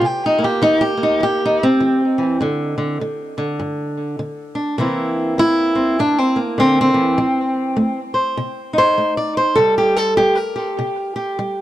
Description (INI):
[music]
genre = acoustic country blues, solo or duo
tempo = 101 BPM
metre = 4/4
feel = swing 60% on 8ths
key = C mixolydian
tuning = A4 = 440 Hz
[part]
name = fingerpicked steel-string acoustic guitar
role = solo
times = 0.0-11.6 s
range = G2 to D5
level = -15 LUFS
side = equal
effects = tape echo
[sound]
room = small room ambience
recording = dry, close 1970s-style studio recording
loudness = -15 LUFS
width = side -13 dB against mid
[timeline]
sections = 0.0-4.8 A section; 4.8-11.6 B section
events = steel-string acoustic guitar solo 4.8-11.6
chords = 0.0 C7; 2.4 G5; 4.8 C7; 7.2 F7; 9.6 C7(no3)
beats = | 0.03 0.62 1.22 1.81 | 2.40 3.00 3.59 4.19 | 4.78 5.38 5.97 6.57 | 7.17 7.77 8.37 8.96 | 9.56 10.16 10.76 11.36